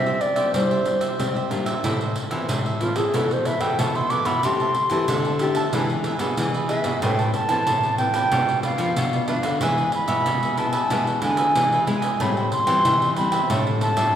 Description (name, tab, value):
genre	samba and choro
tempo	93 BPM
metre	4/4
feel	straight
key	A minor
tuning	A4 = 438 Hz
part	baroque flute	melody	0.0-14.2 s	F4 to D6	-22 LUFS	equal	none
part	cavaquinho	accompaniment	0.0-14.2 s	D4 to A5	-28 LUFS	right 2 dB	none
part	nylon-string guitar	accompaniment	0.0-14.2 s	A2 to B4	-29 LUFS	left 3 dB	none
part	nylon-string guitar	bass	0.0-14.1 s	A2 to C4	-27 LUFS	left 1 dB	none
part	pandeiro	percussion	0.1-14.1 s	none	-27 LUFS	right 1 dB	none
room	wet concert hall reverb, RT60 2.0 s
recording	recorded in a church or concert hall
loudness	-19 LUFS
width	side -9 dB against mid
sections	0.0-1.8 A section; 1.8-14.2 B section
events	flute solo 1.8-14.2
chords	0.0 Cadd9; 1.8 Am; 3.1 Esus4/B; 4.4 Am7/C; 5.7 E7; 7.0 Amadd9; 8.3 Bdim; 9.6 E; 12.2 Am7; 13.5 Dmadd9/A